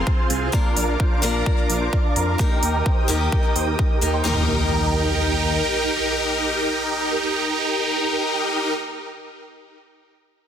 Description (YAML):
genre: EDM, festival progressive house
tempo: 129 BPM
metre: 4/4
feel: straight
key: Eb major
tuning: A4 = 440 Hz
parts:
  - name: picked steel-string acoustic guitar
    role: accompaniment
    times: 0.0-9.0 s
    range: Bb3 to C5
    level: -28 LUFS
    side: left 2 dB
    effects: sidechain pumping, digital delay
  - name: supersaw pad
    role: sustained chords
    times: 0.0-8.7 s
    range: Eb4 to Eb6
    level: -30 LUFS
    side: equal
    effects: sidechain pumping
  - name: big supersaw lead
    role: riff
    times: 0.0-8.7 s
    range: C4 to D5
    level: -22 LUFS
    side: right 1 dB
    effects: phaser, sidechain pumping, low-pass filter, digital delay
  - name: wide detuned saw bass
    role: bass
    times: 0.0-5.6 s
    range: Bb1 to F2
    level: -23 LUFS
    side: equal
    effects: chorus, sidechain pumping
  - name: electronic kick drum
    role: drums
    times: 0.1-3.9 s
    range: none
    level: -20 LUFS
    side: equal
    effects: none
  - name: electronic hi-hat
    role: drums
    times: 0.3-4.1 s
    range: none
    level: -26 LUFS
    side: right 1 dB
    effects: none
  - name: impact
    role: sound effects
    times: 4.3-9.0 s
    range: none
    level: -30 LUFS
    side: equal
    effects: none
room: light reverb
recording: dense, heavily limited modern master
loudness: -18 LUFS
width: side -9 dB against mid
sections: 0.0-4.3 A section; 4.3-8.0 B section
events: filter sweep on supersaw synth 0.0-4.3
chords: 0.0 Fm; 0.5 Bb; 2.4 Eb